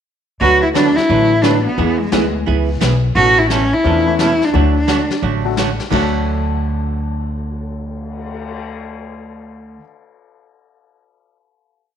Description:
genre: country, western swing.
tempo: 174 BPM.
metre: 4/4.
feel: swing 65% on 8ths.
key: D major.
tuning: A4 = 440 Hz.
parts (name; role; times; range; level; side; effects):
dark cello; melody; 0.4-5.1 s; G#3 to F#4; -14 LUFS; equal; none.
archtop guitar, miked and amplified; accompaniment; 0.4-9.8 s; B2 to B4; -21 LUFS; right 10 dB; none.
upright bass; bass; 0.4-9.8 s; A1 to E2; -19 LUFS; equal; none.
vintage brush drum kit; drums; 0.4-8.6 s; brushed snare drum, crash cymbal, cymbal swell, hi-hat, kick drum, snare drum; -26 LUFS; left 7 dB; none.
clear upright piano; accompaniment; 0.7-9.8 s; D2 to A4; -24 LUFS; left 11 dB; none.
room: moderate echo chamber reverb, RT60 1.4 s, small room reverb.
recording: 1960s-style stereo with parts hard left and right.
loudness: -13 LUFS.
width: side -8 dB against mid.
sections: 0.4-5.9 A section; 5.9-8.7 final chord.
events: none.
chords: 0.4 D6; 1.8 E; 3.2 Aadd9; 4.5 D.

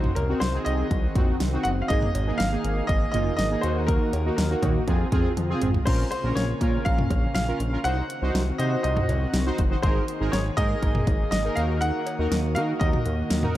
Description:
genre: synth-pop.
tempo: 121 BPM.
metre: 4/4.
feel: straight.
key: Bb minor.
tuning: A4 = 440 Hz.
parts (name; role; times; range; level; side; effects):
clear grand piano; melody; 0.0-13.5 s; Bb4 to Gb5; -30 LUFS; equal; slapback echo, shimmer reverb.
analog synth brass; accompaniment; 0.0-13.6 s; Bb3 to C5; -30 LUFS; right 1 dB; chorus, shimmer reverb.
lush unison pad; sustained chords; 0.1-13.6 s; C3 to Ab4; -33 LUFS; equal; chorus, shimmer reverb.
fat analog bass; bass; 0.0-13.5 s; Gb1 to Eb3; -26 LUFS; equal; none.
pop drum kit; drums; 0.0-13.5 s; cowbell, crash cymbal, hi-hat, kick drum, snare drum, toms; -25 LUFS; equal; none.
room: light reverb.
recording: dark, warm production.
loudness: -22 LUFS.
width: side -14 dB against mid.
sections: 0.0-5.9 A section; 5.9-13.6 B section.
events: drum fill 5.4-5.9.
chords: 0.0 Cdim; 1.9 Absus2; 3.6 Ebm; 4.9 Fm; 5.9 Bbm; 7.9 Cdim; 9.8 Absus2; 11.6 Ebm.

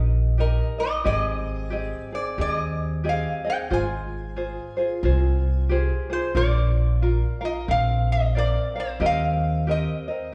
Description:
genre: Hawaiian.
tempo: 91 BPM.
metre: 4/4.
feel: swing 61% on 8ths.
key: Eb major.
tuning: A4 = 440 Hz.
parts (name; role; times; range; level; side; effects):
tenor ukulele; accompaniment; 0.0-10.3 s; C4 to F5; -31 LUFS; equal; none.
upright bass; bass; 0.0-9.9 s; Ab1 to Eb2; -26 LUFS; equal; none.
metal-body resonator slide guitar; melody; 0.4-10.3 s; Bb4 to Ab5; -29 LUFS; equal; none.
room: wet recital hall reverb, RT60 1.5 s.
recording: recorded in a church or concert hall, nothing above 10.5 kHz.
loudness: -24 LUFS.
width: mono.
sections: 0.0-10.3 A section.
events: none.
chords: 0.0 Eb; 1.1 Abmaj7; 3.7 Fmadd9/Ab; 6.4 Bb5; 7.7 Bbadd9; 9.0 Eb6.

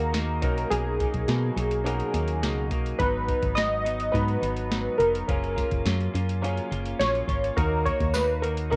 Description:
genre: indie pop, bedroom pop.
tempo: 105 BPM.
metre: 4/4.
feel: straight.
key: F# major.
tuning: A4 = 440 Hz.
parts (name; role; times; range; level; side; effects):
warm analog keys; melody; 0.0-8.8 s; G#4 to D#5; -29 LUFS; equal; analog chorus, cassette tape, analog delay.
clear upright piano; accompaniment; 0.0-8.8 s; A#3 to A#5; -37 LUFS; equal; cassette tape.
semi-hollow electric guitar; accompaniment; 0.0-8.8 s; G#2 to F#4; -36 LUFS; equal; analog chorus, vibrato effect, cassette tape.
organ-like FM bass; bass; 0.0-8.8 s; E#1 to D#3; -31 LUFS; equal; none.
soft vintage rhythm box; drums; 0.1-8.8 s; hi-hat, kick drum, snare drum; -33 LUFS; equal; cassette tape.
tambourine; percussion; 8.1-8.3 s; none; -41 LUFS; equal; none.
room: light reverb.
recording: home recording on cassette.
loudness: -26 LUFS.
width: mono.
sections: 0.0-8.8 A section.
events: none.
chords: 0.4 Bmaj7; 3.0 G#m7; 5.3 F#maj7; 7.6 D#m.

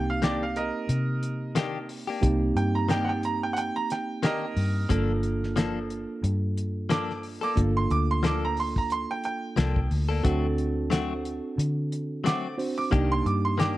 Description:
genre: straight-eighth soul blues.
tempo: 90 BPM.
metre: 4/4.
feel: swing 56% on 16ths.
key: G minor.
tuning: A4 = 439 Hz.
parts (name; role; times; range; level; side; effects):
bright upright piano; second line; 0.0-13.8 s; Bb4 to D6; -30 LUFS; right 4 dB; none.
tine electric piano; accompaniment; 0.0-13.8 s; Bb3 to C5; -31 LUFS; right 3 dB; none.
vintage muted fingered electric bass; bass; 0.0-13.8 s; G1 to D3; -28 LUFS; left 1 dB; none.
direct-recorded clean electric guitar; stabs; 0.2-13.8 s; Eb3 to A4; -32 LUFS; left 6 dB; spring reverb.
cloth-damped thuddy drum kit; drums; 0.2-13.8 s; hi-hat, kick drum, snare drum; -28 LUFS; left 1 dB; none.
room: small room ambience.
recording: dry, close 1970s-style studio recording.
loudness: -24 LUFS.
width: side -16 dB against mid.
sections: 0.0-13.8 A section.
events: upright piano solo 0.0-13.8.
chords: 0.0 Cm9; 4.9 Gm9; 10.2 D7; 12.9 Cm9.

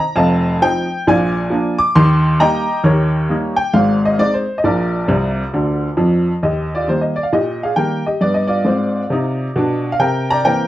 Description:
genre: jazz, stride piano.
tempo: 134 BPM.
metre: 4/4.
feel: swing 61% on 8ths.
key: Eb major.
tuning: A4 = 441 Hz.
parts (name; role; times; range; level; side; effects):
clear upright piano; solo; 0.0-10.7 s; F1 to D6; -14 LUFS; equal; none.
room: moderate studio reverb, RT60 0.7 s.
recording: dark, warm production.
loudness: -14 LUFS.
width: side -14 dB against mid.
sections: 0.0-6.4 A section; 6.4-10.7 B section.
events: upright piano fill 5.1-6.4.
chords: 0.2 F7; 1.1 Bb7; 2.0 Eb; 3.7 Ab; 4.6 Bb; 6.4 Eb; 8.2 G7; 10.0 C7.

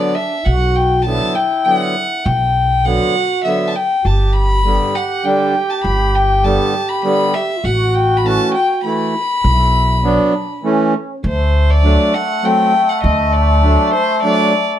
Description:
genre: klezmer.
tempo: 100 BPM.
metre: 3/4.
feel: straight.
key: B minor.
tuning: A4 = 437 Hz.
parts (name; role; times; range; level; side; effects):
rich violin; melody; 0.0-14.7 s; C5 to B5; -17 LUFS; left 2 dB; plate reverb.
trombone with plunger mute; second line; 0.0-14.8 s; A3 to G4; -20 LUFS; equal; none.
accordion; accompaniment; 0.0-14.5 s; D3 to E4; -17 LUFS; right 2 dB; none.
upright bass; bass; 0.5-13.8 s; G1 to D2; -15 LUFS; equal; none.
room: moderate studio reverb, RT60 0.6 s.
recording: dark, warm production.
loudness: -13 LUFS.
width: side -11 dB against mid.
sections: 0.0-11.2 A section; 11.2-14.8 B section.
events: none.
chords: 0.0 Bm; 4.0 G; 7.6 A; 9.4 Bm; 10.6 A; 11.2 D.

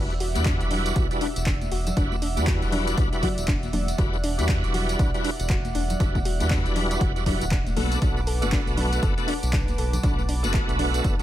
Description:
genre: deep house.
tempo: 119 BPM.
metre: 4/4.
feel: swing 60% on 16ths.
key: E minor.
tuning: A4 = 438 Hz.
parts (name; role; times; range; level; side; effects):
warm analog pad; sustained chords; 0.0-11.2 s; B4 to F#6; -34 LUFS; right 4 dB; chorus, sidechain pumping.
bright tonewheel organ; stabs; 0.0-11.2 s; G3 to B4; -29 LUFS; equal; chorus vibrato, slow rotary speaker, sidechain pumping, ping-pong delay.
round analog bass; bass; 0.0-11.2 s; D1 to E2; -27 LUFS; equal; sidechain pumping.
punchy analog drum machine; drums; 0.1-11.2 s; handclaps, hi-hat, tambourine; -34 LUFS; equal; none.
soft round pluck; arpeggios; 0.2-11.1 s; D4 to A4; -34 LUFS; left 2 dB; chorus, sidechain pumping, digital delay.
congas; percussion; 0.4-10.9 s; none; -34 LUFS; left 2 dB; sidechain pumping on perc.
electronic kick drum; drums; 0.5-11.2 s; none; -25 LUFS; equal; none.
room: little or no reverb.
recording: none.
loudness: -21 LUFS.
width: side -13 dB against mid.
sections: 0.0-11.2 A section.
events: none.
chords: 0.0 Em9; 7.8 Bm7.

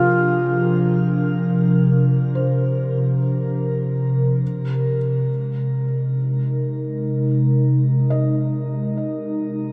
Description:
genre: ambient.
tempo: free time.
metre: none.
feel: none.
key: unclear.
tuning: A4 = 440 Hz.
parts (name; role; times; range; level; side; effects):
mellow reedy alto flute; melody; 0.0-1.0 s; F4; -26 LUFS; equal; shimmer reverb, delay.
warbly tape-like pad; sustained chords; 0.0-9.7 s; C3 to Bb4; -20 LUFS; equal; chorus, built-in reverb.
felt-muted upright piano; arpeggios; 2.4-9.7 s; C5 to Eb5; -36 LUFS; equal; shimmer reverb, delay.
room: wet cathedral reverb, RT60 6.7 s.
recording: dark, warm production.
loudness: -20 LUFS.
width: mono.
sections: 0.0-9.7 A section.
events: filter sweep on ambient pad 0.0-9.7.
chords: 0.0 Bbadd9; 4.4 Abadd9.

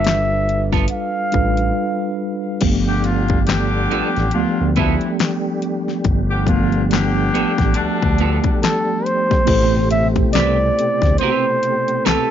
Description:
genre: R&B, neo-soul.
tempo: 70 BPM.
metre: 4/4.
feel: swing 59% on 16ths.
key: unclear.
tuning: A4 = 440 Hz.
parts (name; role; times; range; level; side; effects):
mellow flugelhorn; melody; 0.0-2.2, 8.6-12.3 s; A4 to F5; -20 LUFS; right 1 dB; none.
electric guitar at the edge of break-up; second line; 0.0-12.3 s; B3 to B4; -24 LUFS; right 15 dB; analog chorus.
mellow tine electric piano; accompaniment; 0.0-12.3 s; F3 to C5; -21 LUFS; right 1 dB; medium stereo tremolo.
smooth synth bass; bass; 0.0-12.2 s; G1 to D2; -20 LUFS; equal; transformer saturation.
pop drum kit; drums; 0.0-12.3 s; crash cymbal, handclaps, hi-hat, kick drum, snare drum; -20 LUFS; left 2 dB; none.
tonewheel organ; sustained chords; 2.6-12.3 s; B2 to G4; -26 LUFS; equal; slow rotary speaker, overdrive, chorus vibrato.
warm horn section; stabs; 2.9-8.6 s; B2 to G4; -23 LUFS; left 3 dB; none.
room: little or no reverb.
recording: 1960s-style stereo, nothing above 7.5 kHz.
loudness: -15 LUFS.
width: side -10 dB against mid.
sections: 0.0-2.6 A section; 2.6-9.5 B section; 9.5-12.3 C section.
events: break 1.8-2.6; tine electric piano solo 2.6-9.5.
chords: 0.0 G9; 9.5 Am9.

